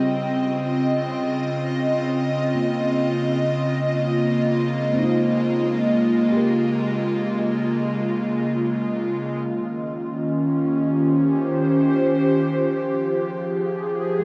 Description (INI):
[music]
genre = ambient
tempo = free time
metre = none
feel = none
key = unclear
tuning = A4 = 440 Hz
[part]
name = airy breathy pad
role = sustained chords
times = 0.0-14.2 s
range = Db3 to G5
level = -22 LUFS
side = equal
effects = chorus, shimmer reverb
[part]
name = handpan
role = arpeggios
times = 0.0-14.2 s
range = G3 to Bb4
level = -35 LUFS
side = equal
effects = analog delay, shimmer reverb
[sound]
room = wet plate reverb, RT60 2.8 s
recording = dreamy mix soaked in reverb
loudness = -22 LUFS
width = mono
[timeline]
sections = 0.0-9.5 A section; 9.5-14.2 B section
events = filter sweep on analog synth pad 9.5-14.2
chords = 0.0 Dbmaj9#11; 3.1 Eb7sus4/Db; 9.5 Eb13; 12.7 Fm11